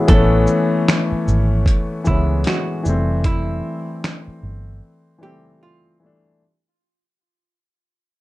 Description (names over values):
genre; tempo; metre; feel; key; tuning
lo-fi hip hop; 76 BPM; 4/4; swing 60% on 16ths; unclear; A4 = 440 Hz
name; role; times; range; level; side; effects
warm upright piano; accompaniment; 0.0-6.4 s; A2 to G#4; -20 LUFS; left 2 dB; cassette tape
archtop guitar, miked and amplified; melody; 0.1-6.0 s; E4 to A4; -26 LUFS; right 2 dB; plate reverb
vintage muted fingered electric bass; bass; 0.1-4.8 s; F1 to C#2; -19 LUFS; equal; none
dusty soul sampler-style drum kit; drums; 0.1-4.3 s; finger snaps, hi-hat, kick drum, shaker, snare drum; -17 LUFS; equal; vintage 12-bit sampler grit
room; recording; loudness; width
moderate studio reverb, RT60 0.6 s; dark, warm production; -16 LUFS; side -18 dB against mid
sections
0.1-6.4 A section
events
fade-out 0.1-6.4; break 4.8-6.4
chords
0.1 Amaj9; 2.8 Fmaj9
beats
| 0.09 0.87 1.66 2.45 | 3.24 4.03 4.82 5.61